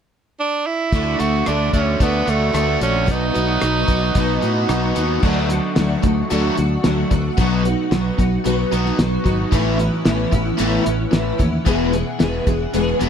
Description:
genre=folk rock and heartland rock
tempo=112 BPM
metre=4/4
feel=straight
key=unclear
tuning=A4 = 440 Hz
part: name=edgy tenor saxophone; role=melody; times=0.4-5.0 s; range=A3 to F#4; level=-22 LUFS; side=right 4 dB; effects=dub echo
part: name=picked twelve-string acoustic guitar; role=accompaniment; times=0.9-13.1 s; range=E2 to G#4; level=-22 LUFS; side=left 2 dB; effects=ensemble chorus, dub echo
part: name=biting overdriven guitar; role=riff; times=0.9-13.1 s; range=E2 to F#4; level=-22 LUFS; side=right 1 dB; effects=dub echo
part: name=fingered electric bass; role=bass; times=0.9-13.1 s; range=E1 to A2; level=-22 LUFS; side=equal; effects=none
part: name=cloth-damped thuddy drum kit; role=drums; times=0.9-13.1 s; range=crash cymbal, hi-hat, kick drum, rim click, snare drum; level=-21 LUFS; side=equal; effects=none
room=little or no reverb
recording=echo-heavy mix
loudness=-16 LUFS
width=side -8 dB against mid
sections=0.9-5.2 A section; 5.2-13.1 B section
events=none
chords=0.0 N.C.; 0.9 D; 3.1 B; 5.2 D; 7.4 B; 9.5 Aadd9; 11.7 E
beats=0.39 | 0.93 1.47 2.01 2.55 | 3.08 3.62 4.16 4.70 | 5.24 5.77 6.31 6.85 | 7.38 7.92 8.46 8.99 | 9.53 10.07 10.60 11.14 | 11.68 12.21 12.75

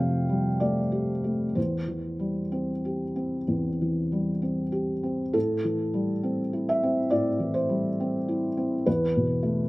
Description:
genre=neoclassical minimalist piano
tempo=62-69 BPM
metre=4/4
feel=rubato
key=A minor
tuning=A4 = 441 Hz
part: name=felt-muted upright piano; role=solo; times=0.0-9.7 s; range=E2 to G5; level=-24 LUFS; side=equal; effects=none
room=little or no reverb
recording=recorded outdoors, with no room sound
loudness=-24 LUFS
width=side -21 dB against mid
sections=0.0-5.3 A section; 5.3-9.7 A section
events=none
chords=0.0 Fadd9; 1.6 C/E; 5.3 Am7; 8.9 Esus4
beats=0.62 | 1.56 2.53 3.48 4.42 | 5.35 6.23 7.11 7.98 | 8.86

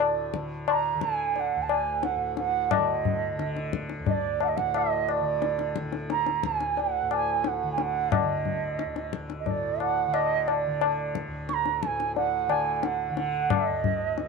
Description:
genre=indian classical, Hindustani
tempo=89 BPM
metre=4/4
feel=straight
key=unclear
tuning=A4 = 440 Hz
part: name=mellow bansuri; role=melody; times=0.0-14.3 s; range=D5 to C#6+23c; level=-27 LUFS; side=right 9 dB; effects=none
part: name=tanpura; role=drone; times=0.0-14.3 s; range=D2 to D3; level=-35 LUFS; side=left 2 dB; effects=none
part: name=tabla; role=percussion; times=0.0-14.3 s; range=none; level=-28 LUFS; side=left 10 dB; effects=none
room=moderate spring reverb, RT60 2.4 s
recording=1960s-style stereo with parts hard left and right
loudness=-24 LUFS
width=side -4 dB against mid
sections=0.0-14.3 A section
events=none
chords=none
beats=| 0.00 0.68 1.36 2.03 | 2.71 3.39 4.07 4.74 | 5.42 6.09 6.77 7.45 | 8.12 8.79 9.47 10.14 | 10.81 11.48 12.15 12.83 | 13.50 14.17

